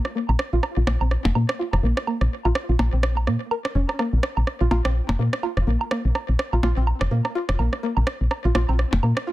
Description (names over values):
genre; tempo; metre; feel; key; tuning
minimal techno; 125 BPM; 4/4; swing 58% on 16ths; unclear; A4 = 441 Hz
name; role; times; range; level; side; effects
electronic rim click, woodblock and percussion blips; percussion; 0.1-9.3 s; none; -26 LUFS; right 2 dB; overdrive, soft clipping on snare, tape echo
string-like resonator pluck; riff; 0.2-9.3 s; Bb3 to Bb4; -28 LUFS; equal; chorus, tape echo
woody FM bass; bass; 0.3-9.1 s; F1 to Bb2; -20 LUFS; equal; none
room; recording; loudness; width
light reverb; dense, heavily limited modern master; -20 LUFS; side -16 dB against mid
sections
0.0-9.3 A section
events
filter sweep on synth pluck 0.0-9.3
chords
0.0 Bb5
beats
| 0.15 0.63 1.11 1.59 | 2.07 2.55 3.03 3.51 | 3.99 4.47 4.95 5.43 | 5.91 6.39 6.87 7.35 | 7.83 8.31 8.79 9.27